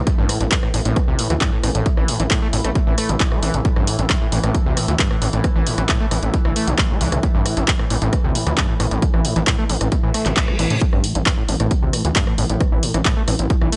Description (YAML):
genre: driving peak-time techno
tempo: 134 BPM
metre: 4/4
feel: straight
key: A minor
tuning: A4 = 440 Hz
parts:
  - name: gritty driven synth bass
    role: bass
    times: 0.0-13.7 s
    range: A1 to A2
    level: -24 LUFS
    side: equal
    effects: tube saturation, sidechain pumping
  - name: analog drone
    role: drone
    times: 0.0-13.8 s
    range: A2 to E3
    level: -30 LUFS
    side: equal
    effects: chorus, sidechain pumping
  - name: overdriven acid bass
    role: riff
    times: 0.1-13.8 s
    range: A1 to A3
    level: -26 LUFS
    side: equal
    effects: lush chorus, cassette tape, sidechain pumping, delay
  - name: electronic kick drum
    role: drums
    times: 0.1-13.6 s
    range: none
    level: -21 LUFS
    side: equal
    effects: overdrive
  - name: punchy analog drum machine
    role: drums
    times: 0.1-13.8 s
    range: handclaps, hi-hat, rim click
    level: -26 LUFS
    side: equal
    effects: sidechain pumping on hats, sidechain pumping on toms, sidechain pumping on cymbals
  - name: reverse cymbal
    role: sound effects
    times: 10.1-10.8 s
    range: none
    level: -31 LUFS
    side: equal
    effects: none
room: light reverb, digital ambience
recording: nothing above 10.8 kHz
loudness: -19 LUFS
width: mono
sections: 0.0-13.8 A section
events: reverse cymbal 10.1-10.8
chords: 0.0 A5